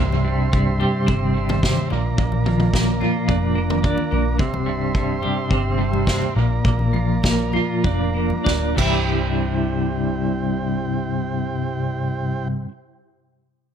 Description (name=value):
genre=psychedelic rock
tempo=92-109 BPM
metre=4/4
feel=straight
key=C mixolydian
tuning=A4 = 440 Hz
part: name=combo organ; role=sustained chords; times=0.0-12.5 s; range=E4 to C6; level=-28 LUFS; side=right 5 dB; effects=none
part: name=twelve-string electric guitar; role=riff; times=0.0-12.7 s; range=C2 to F4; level=-21 LUFS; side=equal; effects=tremolo, double-tracked left and right
part: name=hollow-body short-scale picked electric bass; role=bass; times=0.0-12.6 s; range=C1 to Bb1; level=-25 LUFS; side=equal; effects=none
part: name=congas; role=percussion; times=0.1-9.4 s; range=none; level=-34 LUFS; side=left 4 dB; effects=none
part: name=vintage drum kit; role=drums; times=0.5-8.9 s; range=crash cymbal, kick drum, snare drum, toms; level=-23 LUFS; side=equal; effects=analog delay
room=light reverb, small room ambience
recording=echo-heavy mix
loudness=-18 LUFS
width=side -8 dB against mid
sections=0.0-9.1 A section; 9.1-11.7 B section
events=slowing down 4.4-9.1; drum fill 8.5-9.1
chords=0.0 C; 1.9 Bb; 4.4 C; 6.4 Bb; 8.8 C